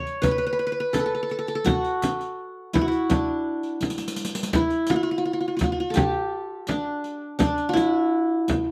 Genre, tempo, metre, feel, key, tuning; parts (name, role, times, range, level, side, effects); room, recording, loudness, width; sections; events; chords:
Arabic maqam ensemble; 84 BPM; 4/4; straight; D maqam ajam; A4 = 440 Hz
qanun; melody; 0.0-8.7 s; D4 to C#5; -26 LUFS; equal; slapback echo
riq; percussion; 0.1-8.7 s; -37 LUFS; equal
frame drum; percussion; 0.2-8.7 s; -27 LUFS; equal
little or no reverb; recorded outdoors, with no room sound; -25 LUFS; mono
0.0-4.5 A section; 4.5-8.7 B section
drum fill 3.8-4.5